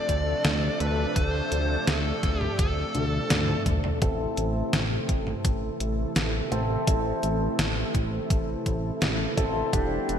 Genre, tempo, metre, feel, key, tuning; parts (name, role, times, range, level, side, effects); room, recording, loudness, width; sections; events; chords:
synthwave; 84 BPM; 4/4; straight; A minor; A4 = 440 Hz
dark smooth lead guitar; melody; 0.0-3.6 s; A4 to D5; -30 LUFS; equal; overdrive, ping-pong delay
lush unison pad; sustained chords; 0.0-10.2 s; C3 to A4; -31 LUFS; equal; chorus, sidechain pumping
fat analog bass; bass; 0.1-10.2 s; E1 to D2; -29 LUFS; equal; tube saturation, sidechain pumping
detuned 8-bit digital drum machine; drums; 0.1-10.2 s; hi-hat, snare drum, toms; -29 LUFS; equal; gated reverb
electronic kick drum; drums; 0.1-9.9 s; -27 LUFS; equal
dark baby grand piano; stabs; 4.0-10.2 s; C4 to A4; -31 LUFS; equal; analog chorus, low-pass filter, digital delay
moderate lush hall reverb, RT60 2.4 s; bright 1980s-style digital production; -24 LUFS; side -8 dB against mid
0.0-4.0 A section; 4.0-10.2 B section
drum fill 2.9-4.0; filter sweep on grand piano 4.0-10.2
0.0 Dm7; 4.0 Am